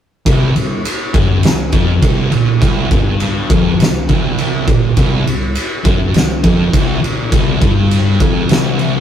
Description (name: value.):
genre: stoner and doom metal.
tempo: 102 BPM.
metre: 4/4.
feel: straight.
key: unclear.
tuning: A4 = 441 Hz.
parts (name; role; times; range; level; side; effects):
thick fuzz guitar; riff; 0.3-9.0 s; C2 to Bb2; -17 LUFS; left 2 dB; distortion.
thick fuzz guitar; riff; 0.3-9.0 s; C2 to Bb2; -17 LUFS; right 2 dB; distortion.
oversized low-tuned drum kit; drums; 0.3-8.9 s; kick drum, ride cymbal, snare drum; -14 LUFS; equal; none.
room: moderate studio reverb, RT60 0.6 s.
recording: rough rehearsal-room recording, warm saturation.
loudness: -11 LUFS.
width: side -9 dB against mid.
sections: 0.3-9.0 A section.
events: none.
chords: 0.3 C5.